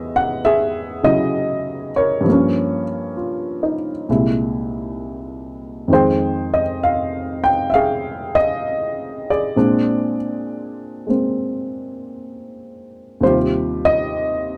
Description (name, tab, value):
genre	solo jazz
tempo	66 BPM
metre	4/4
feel	swing 67% on 8ths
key	unclear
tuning	A4 = 441 Hz
part	dark upright piano	solo	0.0-14.6 s	C2 to G5	-20 LUFS	equal	none
room	light reverb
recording	dark, warm production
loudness	-19 LUFS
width	mono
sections	0.0-14.6 A section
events	none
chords	0.0 E69; 2.2 Gm7b5; 4.1 C7b13; 5.9 Fm9; 9.6 Bb9; 13.2 Eb69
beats	0.42 1.34 | 2.25 3.16 4.08 4.99 | 5.90 6.82 7.73 8.65 | 9.56 10.47 11.39 12.30 | 13.22 14.13